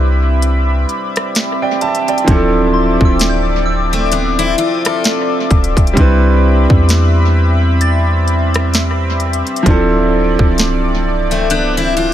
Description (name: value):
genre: contemporary R&B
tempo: 65 BPM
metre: 4/4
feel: swing 58% on 16ths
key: C major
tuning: A4 = 444 Hz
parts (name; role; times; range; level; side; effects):
- clear concert grand piano; accompaniment; 0.0-12.1 s; E3 to A5; -17 LUFS; right 2 dB; dub echo
- chorused pulse-width pad; sustained chords; 0.0-12.1 s; C4 to D6; -19 LUFS; equal; none
- clean 808-style bass; bass; 0.0-12.1 s; C1 to E2; -14 LUFS; equal; none
- soft synth bell; texture; 0.0-12.1 s; C6 to A6; -26 LUFS; left 1 dB; chorus, phaser, dub echo
- trap drum kit; drums; 0.4-12.1 s; hi-hat, kick drum, rim click, snare drum; -16 LUFS; equal; dub echo
- picked steel-string acoustic guitar; arpeggios; 3.9-12.1 s; A3 to A4; -16 LUFS; left 4 dB; dub echo
room: little or no reverb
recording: echo-heavy mix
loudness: -11 LUFS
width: side -11 dB against mid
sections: 0.0-12.1 A section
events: none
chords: 0.0 Cmaj9; 2.3 Dm9; 6.0 Cmaj9; 9.7 Dm9